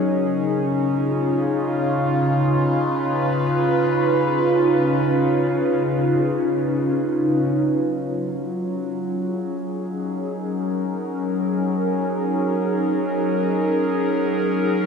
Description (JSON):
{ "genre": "ambient", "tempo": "free time", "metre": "none", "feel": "none", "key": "F# major", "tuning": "A4 = 440 Hz", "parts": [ { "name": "warbly tape-like pad", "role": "solo", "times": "0.0-14.9 s", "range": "C#3 to B4", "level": "-19 LUFS", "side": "equal", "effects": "chorus, built-in reverb, phaser, tape echo" } ], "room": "wet scoring stage reverb, RT60 2.0 s", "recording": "none", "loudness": "-19 LUFS", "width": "side -6 dB against mid", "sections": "0.0-7.7 A section; 7.7-14.9 B section", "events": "none", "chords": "0.0 C#7; 7.7 F#6" }